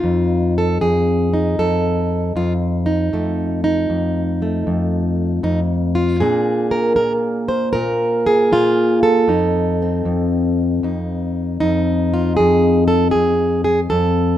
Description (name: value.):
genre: acoustic country blues, solo or duo.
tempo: 78 BPM.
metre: 4/4.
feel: swing 67% on 8ths.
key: F mixolydian.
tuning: A4 = 440 Hz.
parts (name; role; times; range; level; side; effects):
fingerpicked plugged-in steel-string acoustic guitar; solo; 0.0-14.4 s; F2 to C5; -15 LUFS; equal; none.
room: moderate studio reverb, RT60 0.9 s.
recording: minimal, uncompressed stereo recording.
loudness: -15 LUFS.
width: side -12 dB against mid.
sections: 0.0-14.4 A section.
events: none.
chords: 0.0 F7; 6.2 Bb7; 9.3 F7.